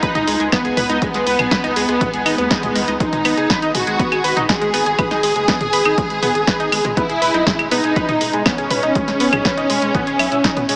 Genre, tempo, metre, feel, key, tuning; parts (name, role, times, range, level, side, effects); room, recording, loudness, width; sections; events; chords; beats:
melodic techno; 121 BPM; 4/4; straight; G# minor; A4 = 441 Hz
soft supersaw; melody; 0.0-10.8 s; B3 to G#4; -23 LUFS; equal; sidechain pumping, analog delay
rich studio violin section; second line; 0.0-10.8 s; B3 to G#4; -25 LUFS; equal; sidechain pumping, tape echo
tight sequenced synth; arpeggios; 0.0-10.8 s; D#3 to B5; -23 LUFS; equal; chorus, sidechain pumping, tape echo
electronic kick drum; drums; 0.0-10.5 s; -25 LUFS; equal
punchy analog drum machine; drums; 0.0-10.8 s; claves, hi-hat, snare drum, toms; -23 LUFS; equal
round analog bass; bass; 0.2-10.8 s; E1 to D#2; -34 LUFS; equal; sidechain pumping
swell; sound effects; 2.2-3.0 s; -33 LUFS; equal
wet huge ambient reverb, RT60 6.4 s; dreamy mix soaked in reverb, small speaker sound; -17 LUFS; mono
0.0-10.8 A section
swell 2.2-3.0
0.0 C#sus2; 3.0 G#m; 7.0 E
0.03 0.52 | 1.02 1.51 2.01 2.51 | 3.00 3.50 4.00 4.49 | 4.99 5.48 5.98 6.47 | 6.97 7.47 7.96 8.46 | 8.95 9.45 9.95 10.44